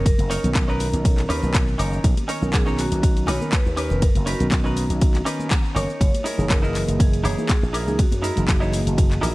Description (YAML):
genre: nu-disco, nu disco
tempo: 121 BPM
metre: 4/4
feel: swing 54% on 16ths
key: B major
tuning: A4 = 440 Hz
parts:
  - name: vibraphone with medium mallets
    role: melody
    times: 0.0-9.3 s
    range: F#4 to C#5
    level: -30 LUFS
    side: equal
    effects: tape echo
  - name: mellow tine electric piano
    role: accompaniment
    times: 0.0-9.3 s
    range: D#3 to A#5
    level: -28 LUFS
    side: right 1 dB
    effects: none
  - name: direct-recorded clean electric guitar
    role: riff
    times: 0.0-9.3 s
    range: C#4 to C#5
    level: -29 LUFS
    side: right 2 dB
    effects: lush chorus
  - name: slap bass with an envelope filter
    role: bass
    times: 0.0-9.3 s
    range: F#1 to F#2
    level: -24 LUFS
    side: equal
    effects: none
  - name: electronic kick drum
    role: drums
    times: 0.1-9.1 s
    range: none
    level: -19 LUFS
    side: equal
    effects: overdrive, small room ambience
  - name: house drum kit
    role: drums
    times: 0.1-9.3 s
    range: handclaps, hi-hat, ride cymbal, shaker, woodblock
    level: -29 LUFS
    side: left 1 dB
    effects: overdrive, small room ambience
  - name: congas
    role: percussion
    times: 0.2-9.2 s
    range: none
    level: -34 LUFS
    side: left 2 dB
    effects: none
room: little or no reverb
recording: dark, warm production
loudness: -18 LUFS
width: side -20 dB against mid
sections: 0.0-9.3 A section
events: none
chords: 0.0 Bmaj9; 6.0 F#13